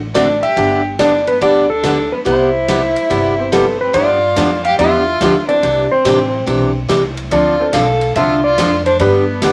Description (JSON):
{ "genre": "country, western swing", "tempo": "142 BPM", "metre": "4/4", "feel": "swing 66% on 8ths", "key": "C major", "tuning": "A4 = 441 Hz", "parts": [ { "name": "upright bass", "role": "bass", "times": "0.0-9.5 s", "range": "G1 to G2", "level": "-26 LUFS", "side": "equal", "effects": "none" }, { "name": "rich fiddle", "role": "second line", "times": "0.1-9.5 s", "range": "B3 to A4", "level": "-22 LUFS", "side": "equal", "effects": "none" }, { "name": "picked steel-string acoustic guitar", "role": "accompaniment", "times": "0.1-9.5 s", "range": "C3 to A4", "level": "-18 LUFS", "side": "equal", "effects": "none" }, { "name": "swinging big-band drum kit", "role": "drums", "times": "0.1-9.5 s", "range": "hi-hat, kick drum, ride cymbal, snare drum", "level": "-28 LUFS", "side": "equal", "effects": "none" }, { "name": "clean lap steel guitar", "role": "melody", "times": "0.2-9.5 s", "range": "A4 to F5", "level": "-18 LUFS", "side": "equal", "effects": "none" }, { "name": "honky-tonk upright piano", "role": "accompaniment", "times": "1.0-9.5 s", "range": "B3 to D5", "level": "-27 LUFS", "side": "equal", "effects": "none" } ], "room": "wet studio ambience, RT60 0.5 s", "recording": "none", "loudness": "-14 LUFS", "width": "mono", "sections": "0.0-3.9 A section; 3.9-9.5 B section", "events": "none", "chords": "0.0 D7; 0.6 G; 2.3 Cmaj7; 3.9 G7; 5.6 Cadd9; 7.3 Dm7; 9.0 G" }